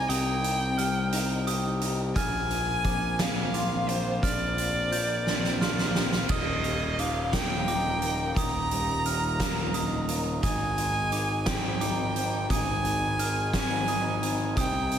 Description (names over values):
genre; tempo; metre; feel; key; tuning
post-rock; 58 BPM (dotted quarters); 6/8; straight; Eb major; A4 = 440 Hz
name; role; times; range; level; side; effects
rich violin; melody; 0.0-15.0 s; C5 to Bb5; -30 LUFS; equal; slapback echo, digital delay
electric guitar through a small old amp; arpeggios; 0.0-15.0 s; Eb2 to G4; -34 LUFS; left 2 dB; ensemble chorus, slapback echo, digital delay
glockenspiel with soft plastic mallets; arpeggios; 0.0-15.0 s; D6 to G6; -36 LUFS; right 4 dB; slapback echo, digital delay
fuzz picked electric bass; bass; 0.0-15.0 s; Eb1 to C2; -31 LUFS; equal; overdrive
oversized low-tuned drum kit; drums; 0.1-15.0 s; crash cymbal, hi-hat, kick drum, snare drum; -30 LUFS; right 1 dB; none
room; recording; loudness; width
moderate concert hall reverb, RT60 2.2 s; big arena sound; -25 LUFS; side -9 dB against mid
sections
0.0-6.3 A section; 6.3-15.0 B section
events
drum fill 5.3-6.3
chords
0.0 Cm; 2.2 Bb9; 6.3 Ebmaj7; 10.4 Abmaj7